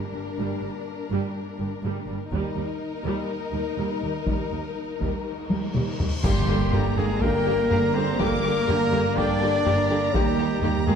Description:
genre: cinematic, epic orchestral film score.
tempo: 124 BPM.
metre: 4/4.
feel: straight.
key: G minor.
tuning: A4 = 441 Hz.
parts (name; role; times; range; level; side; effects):
dark studio violin section; melody; 0.0-11.0 s; Bb4 to D6; -33 LUFS; left 4 dB; none.
dark symphonic violin section; second line; 0.0-11.0 s; Bb3 to G4; -34 LUFS; left 4 dB; none.
warm symphonic viola section; accompaniment; 0.0-11.0 s; D3 to G3; -32 LUFS; right 2 dB; none.
mellow French horn section; sustained chords; 0.0-11.0 s; G3 to D5; -30 LUFS; left 5 dB; none.
impact and cymbal swell; sound effects; 0.0-0.4, 5.6-8.2 s; none; -38 LUFS; equal; none.
dark symphonic double bass section; bass; 0.1-11.0 s; G1 to Eb2; -30 LUFS; right 5 dB; none.
rich symphonic cello section; bass; 0.1-11.0 s; Eb2 to D4; -31 LUFS; right 3 dB; none.
taiko ensemble; drums; 2.3-11.0 s; none; -28 LUFS; left 1 dB; none.
cymbal swell, clash cymbals and concert bass drum; percussion; 2.3-7.2 s; none; -34 LUFS; left 1 dB; none.
clear trombone section; sustained chords; 6.2-11.0 s; D3 to Bb3; -35 LUFS; right 4 dB; none.
pipe organ, stopped flute; sustained chords; 6.2-11.0 s; Bb3 to Eb5; -32 LUFS; left 2 dB; none.
bright trumpet; stabs; 6.2-11.0 s; G4 to D5; -31 LUFS; right 2 dB; none.
timpani; percussion; 6.2-6.9 s; G2; -33 LUFS; equal; none.
room: moderate scoring stage reverb, RT60 1.5 s.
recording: dark, warm production.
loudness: -22 LUFS.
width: side -7 dB against mid.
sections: 0.0-6.2 A section; 6.2-11.0 B section.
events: impact 0.0-0.4, 6.2-8.2; drum fill 5.5-6.2; cymbal swell 5.6-6.2; band accent 6.2-6.7.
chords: 0.0 Gm; 2.3 Eb; 6.2 Gm; 10.1 Eb.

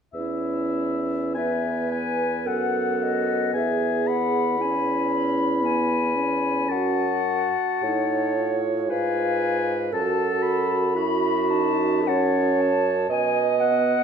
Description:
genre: classical, slow romantic movement for wind quintet.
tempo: 47-61 BPM.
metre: 3/4.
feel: rubato.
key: E major.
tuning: A4 = 440 Hz.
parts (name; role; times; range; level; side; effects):
warm oboe; second line; 0.1-14.0 s; E5 to B5; -28 LUFS; left 4 dB; none.
mellow clarinet; accompaniment; 0.1-14.0 s; E4 to D#5; -26 LUFS; right 7 dB; none.
dark bassoon; bass; 0.1-14.0 s; E2 to B2; -27 LUFS; right 2 dB; none.
mellow French horn; accompaniment; 0.2-14.0 s; B3 to F#4; -29 LUFS; left 1 dB; none.
silver concert flute; melody; 1.4-14.0 s; D#5 to B5; -28 LUFS; left 9 dB; none.
room: wet recital hall reverb, RT60 1.7 s.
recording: none.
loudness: -21 LUFS.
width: side -7 dB against mid.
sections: 0.1-14.0 A section.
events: none.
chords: 0.1 E; 2.5 D#dim/F#; 3.5 E; 6.7 F#m; 8.9 Fdim/Ab; 9.9 F#m; 13.1 B.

